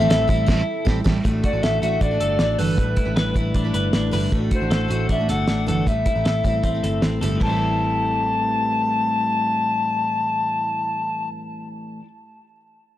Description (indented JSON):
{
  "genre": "jangly indie pop",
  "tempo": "155 BPM",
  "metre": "4/4",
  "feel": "straight",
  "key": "A dorian",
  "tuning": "A4 = 439 Hz",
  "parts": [
    { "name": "mellow alto recorder", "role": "melody", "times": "0.0-11.3 s", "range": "B4 to A5", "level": "-23 LUFS", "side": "left 1 dB", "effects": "none" },
    { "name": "picked steel-string acoustic guitar", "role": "accompaniment", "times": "0.0-12.1 s", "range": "A2 to B4", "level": "-28 LUFS", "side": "right 4 dB", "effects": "none" },
    { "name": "twelve-string electric guitar", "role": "arpeggios", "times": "0.0-12.1 s", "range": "A2 to B4", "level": "-26 LUFS", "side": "left 3 dB", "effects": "none" },
    { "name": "vintage muted picked electric bass", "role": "bass", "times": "0.0-12.0 s", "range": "G1 to A1", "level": "-24 LUFS", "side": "equal", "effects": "none" },
    { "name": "cloth-damped thuddy drum kit", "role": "drums", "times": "0.1-7.5 s", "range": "crash cymbal, hi-hat, kick drum, ride cymbal, snare drum", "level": "-22 LUFS", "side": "equal", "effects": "none" }
  ],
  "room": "small room reverb",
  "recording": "dry, gritty hardware recording, transformer saturation",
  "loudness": "-18 LUFS",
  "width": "side -13 dB against mid",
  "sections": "0.0-1.2 A section; 1.2-7.4 B section; 7.4-10.5 C section",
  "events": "band accent 0.5-1.2",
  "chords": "0.0 Am7; 1.2 Dadd9/A; 2.8 G6/A; 4.3 Dadd9/A; 5.9 C/A; 7.4 Am7"
}